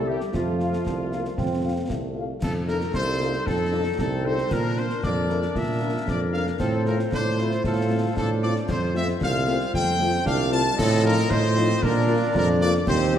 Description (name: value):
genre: military-style march for wind band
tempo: 115 BPM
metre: 2/4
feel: straight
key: F major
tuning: A4 = 439 Hz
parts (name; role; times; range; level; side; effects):
- bright trumpet section; melody; 0.0-13.2 s; F4 to A5; -28 LUFS; left 1 dB; none
- clear euphonium; second line; 0.0-2.4 s; G3 to C4; -32 LUFS; right 2 dB; none
- mellow woodwind section; second line; 0.0-13.2 s; D4 to Eb5; -32 LUFS; left 2 dB; none
- warm trombone section; sustained chords; 0.0-13.2 s; F3 to F4; -32 LUFS; right 3 dB; none
- warm tuba; bass; 0.0-13.2 s; C2 to Bb2; -24 LUFS; right 1 dB; none
- dark French horn section; accompaniment; 0.1-13.2 s; F3 to F5; -32 LUFS; left 5 dB; none
- concert snare drum, concert bass drum and clash cymbals; drums; 0.2-13.2 s; none; -31 LUFS; left 1 dB; none
room: wet scoring stage reverb, RT60 1.5 s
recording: dark, warm production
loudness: -21 LUFS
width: side -9 dB against mid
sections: 0.0-2.4 A section; 2.4-13.2 A section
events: none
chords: 0.3 F; 2.4 F7; 4.5 Bb; 6.6 F/A; 8.7 F; 10.8 F7/A; 11.8 Bb